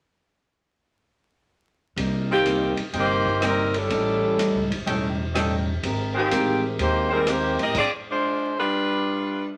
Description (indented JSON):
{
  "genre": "jazz, big band swing",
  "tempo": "125 BPM",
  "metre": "4/4",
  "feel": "swing 66% on 8ths",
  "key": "C minor",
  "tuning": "A4 = 440 Hz",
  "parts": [
    { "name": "hollow-body jazz guitar", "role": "accompaniment", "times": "2.0-7.6 s", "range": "A2 to Bb4", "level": "-31 LUFS", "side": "equal", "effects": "none" },
    { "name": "upright bass", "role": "bass", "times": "2.0-7.7 s", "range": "E1 to A2", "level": "-32 LUFS", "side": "equal", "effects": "none" },
    { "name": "vintage drum kit", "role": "drums", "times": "2.0-7.9 s", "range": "crash cymbal, hi-hat, kick drum, ride cymbal, rim click", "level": "-35 LUFS", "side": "equal", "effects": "none" },
    { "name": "bright saxophone section", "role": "melody", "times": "2.3-9.5 s", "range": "Eb3 to Eb5", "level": "-25 LUFS", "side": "equal", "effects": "none" },
    { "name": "warm trumpet section", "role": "stabs", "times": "2.9-7.2 s", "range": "Ab4 to G5", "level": "-32 LUFS", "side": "equal", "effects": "none" },
    { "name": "warm grand piano", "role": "accompaniment", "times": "3.9-7.3 s", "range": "G3 to D#5", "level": "-32 LUFS", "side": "equal", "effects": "none" }
  ],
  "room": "wet studio reverb, RT60 0.6 s",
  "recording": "vinyl crackle",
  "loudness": "-23 LUFS",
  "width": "mono",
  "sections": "2.0-9.6 A section",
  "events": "stop 7.8-9.6",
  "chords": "2.0 Cm7; 3.9 A7#11; 5.8 Abmaj9; 7.8 Dm7b5; 8.7 G7"
}